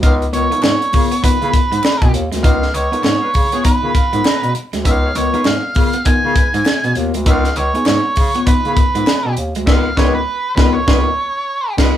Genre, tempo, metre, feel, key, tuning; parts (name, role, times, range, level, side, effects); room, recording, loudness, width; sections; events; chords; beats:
funk; 100 BPM; 4/4; swing 60% on 16ths; Db mixolydian; A4 = 440 Hz
octave-fuzz lead guitar; melody; 0.0-11.7 s; Cb5 to Ab5; -18 LUFS; right 2 dB; distortion
clean electric guitar; riff; 0.0-9.6 s; Ab3 to Db4; -24 LUFS; right 2 dB
muted clav; stabs; 0.0-12.0 s; Cb4 to Cb5; -25 LUFS; equal
warm bass clarinet; bass; 0.0-12.0 s; Db2 to Db3; -20 LUFS; equal
tight funk drum kit; drums; 0.0-12.0 s; crash cymbal, hi-hat, kick drum, snare drum; -15 LUFS; equal
mellow electric guitar; accompaniment; 0.3-12.0 s; Cb4 to Cb5; -22 LUFS; left 7 dB
group handclap; percussion; 0.6-9.2 s; -31 LUFS; left 3 dB
mellow horn section; second line; 2.9-11.9 s; F3 to Bb5; -26 LUFS; left 1 dB
moderate studio reverb, RT60 0.5 s; band playing live in one room; -13 LUFS; side -11 dB against mid
0.0-12.0 A section
band accent 9.7-12.0
0.0 Db13
| 0.03 0.63 1.24 1.84 | 2.44 3.04 3.65 4.25 | 4.85 5.45 6.06 6.66 | 7.26 7.86 8.47 9.07 | 9.67 10.28 10.88 11.48